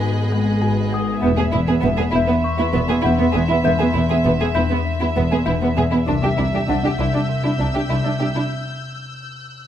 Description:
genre	cinematic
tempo	99 BPM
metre	4/4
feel	straight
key	unclear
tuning	A4 = 440 Hz
part	dark studio violin section	melody	0.0-8.5 s	D#5 to E5	-26 LUFS	equal	none
part	warm studio violin section	second line	0.0-8.4 s	B3 to G#4	-25 LUFS	right 1 dB	none
part	dark symphonic viola section	accompaniment	0.0-8.4 s	B3 to D4	-24 LUFS	right 2 dB	none
part	folk marimba with medium hard mallets	riff	0.0-8.4 s	E2 to C4	-22 LUFS	left 4 dB	none
part	warm symphonic cello section	bass	0.0-8.4 s	C2 to G#2	-24 LUFS	right 3 dB	none
part	warm symphonic double bass section	bass	0.0-8.3 s	E1 to C2	-26 LUFS	right 3 dB	none
part	celesta	texture	0.0-8.5 s	F#5 to D#6	-31 LUFS	left 6 dB	none
part	dark studio violin section	texture	0.0-9.7 s	B5 to G6	-34 LUFS	left 2 dB	none
room	moderate scoring stage reverb, RT60 1.5 s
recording	close, detailed microphones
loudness	-16 LUFS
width	side -10 dB against mid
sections	0.0-9.7 A section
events	break 8.5-9.7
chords	0.0 G#m; 1.2 E5; 6.1 Cadd9; 8.5 Em

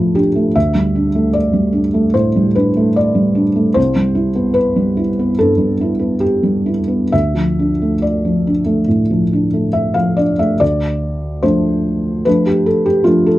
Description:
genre	neoclassical minimalist piano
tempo	65-76 BPM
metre	4/4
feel	rubato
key	D dorian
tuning	A4 = 442 Hz
part	felt-muted upright piano	solo	0.0-13.4 s	C2 to F5	-13 LUFS	equal	none
room	light reverb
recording	dark, warm production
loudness	-13 LUFS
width	side -16 dB against mid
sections	0.0-10.6 A section; 10.6-13.4 A section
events	none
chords	0.0 Dm7; 0.5 Gsus2/D; 3.8 Cmaj7; 7.1 Dm

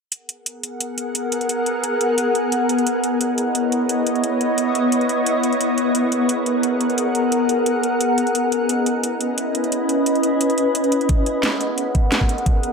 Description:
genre	liquid drum and bass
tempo	175 BPM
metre	4/4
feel	straight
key	G# minor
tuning	A4 = 440 Hz
part	shimmering ambient pad	sustained chords	0.7-12.7 s	B3 to F#5	-18 LUFS	equal	chorus, built-in reverb
part	garage drum kit	drums	0.1-12.7 s	hi-hat, snare drum	-24 LUFS	right 1 dB	none
part	electronic kick drum	drums	11.1-12.5 s	none	-18 LUFS	equal	none
room	wet plate reverb, RT60 1.5 s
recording	dreamy mix soaked in reverb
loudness	-17 LUFS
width	side -5 dB against mid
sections	0.1-12.7 A section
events	none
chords	0.1 G#m9; 2.9 C#m9; 5.6 G#m9; 8.3 C#m9; 11.1 G#m9

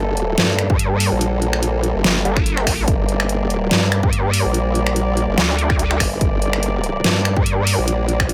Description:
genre	heavy wobble dubstep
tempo	144 BPM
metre	4/4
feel	swing 54% on 16ths, half-time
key	G minor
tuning	A4 = 438 Hz
part	rich chamber string section	sustained chords	0.0-8.3 s	G3 to D5	-26 LUFS	equal	sidechain pumping, low-pass filter
part	formant-sweep wobble bass	bass	0.0-8.3 s	G1 to G2	-22 LUFS	equal	chorus, overdrive
part	dubstep drum kit	drums	0.2-8.3 s	finger snaps, hi-hat, snare drum	-22 LUFS	equal	overdrive
part	vowel-sweep wobble bass	bass	0.7-7.8 s	G1 to G2	-21 LUFS	equal	chorus, overdrive
part	electronic kick drum	drums	0.7-8.3 s	none	-22 LUFS	equal	none
room	light reverb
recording	none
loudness	-18 LUFS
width	mono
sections	0.0-8.3 A section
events	none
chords	0.0 Gmadd9

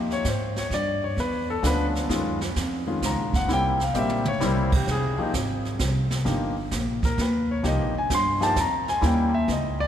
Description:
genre	jazz piano trio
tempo	130 BPM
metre	3/4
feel	swing 68% on 8ths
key	unclear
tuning	A4 = 440 Hz
part	warm concert grand piano	melody	0.0-9.9 s	Eb3 to C6	-25 LUFS	left 2 dB	none
part	upright bass	bass	0.0-9.9 s	F1 to Ab2	-26 LUFS	equal	none
part	jazz brush drum kit	drums	0.1-9.9 s	brushed snare drum, crash cymbal, hi-hat, kick drum, snare drum, toms	-30 LUFS	right 3 dB	none
room	wet cathedral reverb, RT60 5.3 s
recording	recorded in a church or concert hall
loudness	-22 LUFS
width	side -10 dB against mid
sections	0.0-9.9 A section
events	grand piano solo 0.0-9.9; drum fill 3.9-4.4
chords	0.0 Fm11; 0.7 G7#11; 2.1 Gbmaj7; 3.5 C7; 4.9 Fm; 6.3 G7alt; 7.6 Cm7; 9.0 Eb7b9

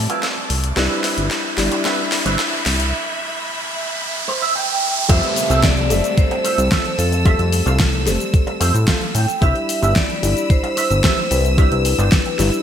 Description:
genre	nu-disco, nu disco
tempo	111 BPM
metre	4/4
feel	straight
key	unclear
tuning	A4 = 440 Hz
part	dark baby grand piano	accompaniment	0.0-12.6 s	G3 to E5	-25 LUFS	left 2 dB	vintage 12-bit sampler grit, sidechain pumping
part	rich studio string section	sustained chords	0.0-12.6 s	F3 to E6	-27 LUFS	right 1 dB	sidechain pumping, low-pass filter
part	fat analog bass	bass	0.0-12.5 s	F1 to A2	-18 LUFS	equal	none
part	riser and downlifter	sound effects	0.0-9.4 s	none	-25 LUFS	right 2 dB	none
part	electric guitar with an envelope filter	riff	0.1-12.3 s	C4 to G5	-24 LUFS	right 4 dB	ensemble chorus, low-pass filter
part	pop drum kit	drums	0.1-12.6 s	crash cymbal, hi-hat, shaker, snare drum	-22 LUFS	left 1 dB	high-pass filter on perc, high-pass filter on snare, high-pass filter on hats, high-pass filter on cymbals, gated reverb
part	vibraphone with medium hard mallets	melody	5.1-12.6 s	A4 to E5	-23 LUFS	left 1 dB	vintage 12-bit sampler grit, ping-pong delay
part	electronic kick drum	drums	5.1-12.2 s	none	-16 LUFS	equal	overdrive
room	moderate lush hall reverb, RT60 1.9 s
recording	bright 1980s-style digital production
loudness	-15 LUFS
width	side -9 dB against mid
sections	0.0-5.1 A section; 5.1-12.6 B section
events	build-up 0.0-5.1; drum fill 0.0-2.9; riser 0.0-5.1; filter sweep on clean electric guitar 0.0-5.1; break 2.9-5.1; clean electric guitar fill 4.0-5.1, 8.3-9.4; drop 5.1-12.6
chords	0.0 Fmaj7; 0.8 Cmaj7; 5.1 Fmaj7; 9.4 Cmaj7

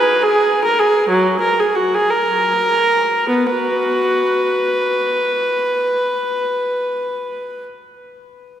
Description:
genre	classical, baroque-style suite movement for unaccompanied viola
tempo	46-73 BPM (dotted quarters)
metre	6/8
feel	rubato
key	unclear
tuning	A4 = 440 Hz
part	warm viola	solo	0.0-7.6 s	F#3 to B4	-15 LUFS	equal	none
room	wet cathedral reverb, RT60 5.5 s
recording	recorded in a church or concert hall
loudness	-14 LUFS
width	side -10 dB against mid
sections	0.0-3.3 A section; 3.3-7.9 B section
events	slowing down 0.0-3.3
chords	none

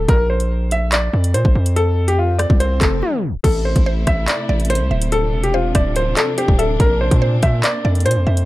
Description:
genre	hip hop, drill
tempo	143 BPM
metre	4/4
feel	half-time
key	A phrygian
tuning	A4 = 441 Hz
part	clear concert grand piano	melody	0.0-8.5 s	F4 to E5	-20 LUFS	left 1 dB	low-pass filter
part	distorted 808-style bass	bass	0.0-8.5 s	D1 to Bb2	-18 LUFS	equal	distortion
part	drill drum kit	drums	0.1-8.5 s	crash cymbal, handclaps, hi-hat, kick drum, rim click	-17 LUFS	equal	none
part	swell	sound effects	2.2-3.4 s	none	-27 LUFS	left 1 dB	none
part	warm studio string section	sustained chords	3.4-8.5 s	C3 to E4	-26 LUFS	equal	none
part	mallet-like synth pluck	second line	3.9-8.5 s	C5 to E5	-27 LUFS	equal	chorus, tape echo
room	little or no reverb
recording	dark, warm production, tape stop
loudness	-14 LUFS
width	side -17 dB against mid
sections	0.0-3.4 A section; 3.4-8.5 B section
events	swell 2.2-3.4; break 3.0-3.4; tape stop 3.0-3.4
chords	0.1 Bbadd9; 1.8 F5; 3.4 Am; 5.1 Dm7; 6.8 Bbadd9

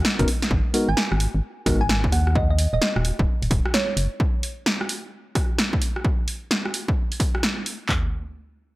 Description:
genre	UK garage, two-step garage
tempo	130 BPM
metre	4/4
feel	swing 64% on 16ths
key	unclear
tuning	A4 = 440 Hz
part	soft string machine	sustained chords	0.0-0.5 s	Eb5 to Eb6	-49 LUFS	right 1 dB	none
part	organ-like FM bass	bass	0.0-4.1 s	Eb1 to Eb2	-22 LUFS	equal	none
part	punchy analog drum machine	drums	0.0-7.8 s	hi-hat, rim click, snare drum	-24 LUFS	equal	overdrive
part	mellow tine electric piano	stabs	0.2-1.8 s	Ab3 to A#4	-26 LUFS	left 1 dB	analog delay
part	punchy analog drum machine	drums	0.2-8.0 s	handclaps, kick drum, toms	-23 LUFS	equal	overdrive
part	thumb-piano-like synth pluck	melody	0.9-4.0 s	Db5 to Ab5	-29 LUFS	right 2 dB	chorus, phaser, analog delay
room	digital ambience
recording	dry, gritty hardware recording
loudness	-20 LUFS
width	side -19 dB against mid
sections	0.5-7.9 A section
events	drum fill 0.0-0.5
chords	0.0 Bmaj9; 0.5 Abm9; 2.1 N.C.

